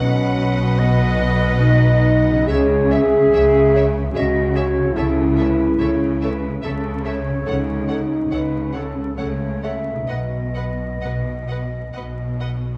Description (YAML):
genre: cinematic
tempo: 71 BPM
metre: 3/4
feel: uneven beats, rubato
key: unclear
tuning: A4 = 440 Hz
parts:
  - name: bright studio violin section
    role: melody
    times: 0.0-12.5 s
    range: E5 to F#5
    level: -36 LUFS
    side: equal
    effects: none
  - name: rich studio violin section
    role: second line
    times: 0.0-12.5 s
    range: C#5 to D#5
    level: -36 LUFS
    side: equal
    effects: none
  - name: silver concert flute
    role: second line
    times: 0.0-12.4 s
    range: A4 to E5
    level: -29 LUFS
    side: equal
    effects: none
  - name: rich studio viola section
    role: accompaniment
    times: 0.0-12.5 s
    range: G#4 to B4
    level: -35 LUFS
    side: equal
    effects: none
  - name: warm French horn section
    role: sustained chords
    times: 0.0-11.9 s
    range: A3 to G#4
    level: -22 LUFS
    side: equal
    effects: none
  - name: concert harp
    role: arpeggios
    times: 0.0-12.8 s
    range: B2 to D#5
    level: -31 LUFS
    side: equal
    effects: none
  - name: clear studio double bass section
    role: bass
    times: 0.0-12.7 s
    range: B1 to C#2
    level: -25 LUFS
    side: equal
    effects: none
  - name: rich studio cello section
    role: bass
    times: 0.0-12.7 s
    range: B2 to C#3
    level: -26 LUFS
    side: equal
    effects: none
room: wet scoring stage reverb, RT60 1.7 s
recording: vinyl crackle, nothing above 10.7 kHz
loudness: -19 LUFS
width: mono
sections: 0.0-12.8 A section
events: none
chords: 0.0 B; 2.5 C#m; 5.0 A/C#; 7.5 F#m/C#; 10.1 B